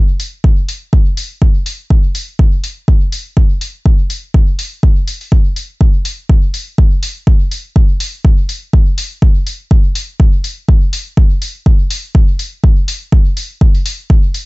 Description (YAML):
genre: techno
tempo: 123 BPM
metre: 4/4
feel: swing 55% on 16ths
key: none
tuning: none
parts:
  - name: electronic hi-hat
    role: drums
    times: 0.2-14.5 s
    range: none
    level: -22 LUFS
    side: left 2 dB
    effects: none
  - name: electronic kick drum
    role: drums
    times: 0.4-14.2 s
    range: none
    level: -9 LUFS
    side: equal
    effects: none
room: little or no reverb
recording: nothing above 7.7 kHz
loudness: -11 LUFS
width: side -22 dB against mid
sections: 0.0-6.8 A section; 6.8-14.5 A section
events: none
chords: none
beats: 0.44 | 0.93 1.42 1.91 2.39 | 2.88 3.37 3.86 4.34 | 4.83 5.32 5.81 6.29 | 6.78 7.27 7.76 8.25 | 8.73 9.22 9.71 10.20 | 10.69 11.17 11.66 12.15 | 12.64 13.12 13.61 14.10